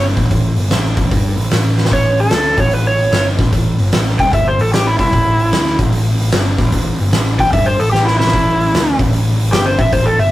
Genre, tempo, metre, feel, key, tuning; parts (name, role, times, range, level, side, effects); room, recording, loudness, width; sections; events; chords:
blues rock power trio and southern rock; 150 BPM; 4/4; swing 65% on 8ths; A4 = 441 Hz
overdriven slide guitar; melody; 0.0-10.3 s; E4 to G5; -15 LUFS; equal
fuzz picked electric bass; bass; 0.0-10.3 s; G1 to G2; -16 LUFS; equal; overdrive
oversized low-tuned drum kit; drums; 0.2-10.3 s; hi-hat, kick drum, snare drum; -16 LUFS; equal
light reverb; rough rehearsal-room recording; -12 LUFS; side -15 dB against mid
0.0-10.3 A section
electric slide guitar solo 0.0-10.3; drum fill 1.7, 7.9-8.3
0.0 Gsus2